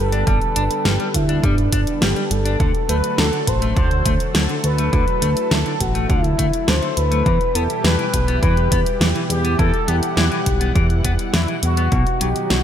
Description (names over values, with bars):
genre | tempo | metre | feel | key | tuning
synthwave | 103 BPM | 4/4 | straight | E minor | A4 = 443 Hz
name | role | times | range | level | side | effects
expressive synth lead | melody | 0.0-12.6 s | D4 to C5 | -23 LUFS | left 1 dB | wide subtle chorus, digital delay, shimmer reverb
lush unison pad | sustained chords | 0.0-12.6 s | B2 to F#5 | -26 LUFS | equal | chorus, sidechain pumping, shimmer reverb
fat analog bass | bass | 0.0-12.6 s | G1 to E2 | -20 LUFS | equal | none
clean electric guitar | riff | 0.1-12.6 s | B2 to D4 | -27 LUFS | left 4 dB | lush chorus, ping-pong delay, shimmer reverb
pop drum kit | drums | 0.1-12.6 s | hi-hat, snare drum | -22 LUFS | equal | none
electronic kick drum | drums | 0.3-12.0 s | none | -21 LUFS | equal | none
room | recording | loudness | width
light reverb | bright 1980s-style digital production | -16 LUFS | side -9 dB against mid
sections
0.0-12.6 A section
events
none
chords
0.0 G; 2.6 D; 7.3 Em; 11.9 B